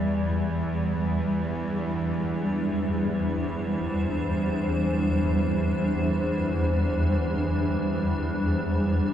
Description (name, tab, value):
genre	ambient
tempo	free time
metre	none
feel	none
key	unclear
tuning	A4 = 440 Hz
part	granular cloud pad	sustained chords	0.0-9.1 s	E2 to E5	-25 LUFS	equal	built-in reverb
part	bowed-like drone	drone	0.0-9.1 s	E2 to E3	-28 LUFS	right 1 dB	built-in reverb
part	bronze singing bowl	texture	0.0-9.1 s	D5	-46 LUFS	equal	none
room	moderate huge ambient reverb, RT60 9.0 s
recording	none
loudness	-24 LUFS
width	side -10 dB against mid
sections	0.0-9.1 A section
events	none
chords	0.0 Csus2/E